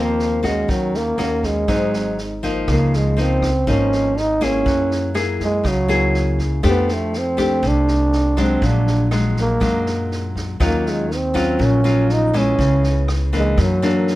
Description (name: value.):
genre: bossa nova.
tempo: 121 BPM.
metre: 4/4.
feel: straight.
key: Db major.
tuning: A4 = 440 Hz.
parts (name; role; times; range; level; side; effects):
growling trombone; melody; 0.0-14.2 s; Gb3 to Eb4; -20 LUFS; right 1 dB; none.
nylon-string guitar; accompaniment; 0.0-14.2 s; Gb2 to Ab4; -22 LUFS; left 2 dB; none.
upright bass; bass; 0.0-14.2 s; Ab1 to Gb2; -21 LUFS; equal; none.
vintage drum kit; drums; 0.2-14.1 s; kick drum, rim click, snare drum; -27 LUFS; equal; none.
room: little or no reverb.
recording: none.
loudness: -16 LUFS.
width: side -16 dB against mid.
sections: 0.0-2.7 A section; 2.7-14.2 B section.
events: none.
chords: 0.0 Ab69; 0.7 Ebm7; 1.7 Ab7; 2.7 Db69; 4.7 Gb9; 6.6 F69; 8.6 Bbaug7; 10.6 Ebm9; 12.6 Dbm7; 13.6 Gbaug7.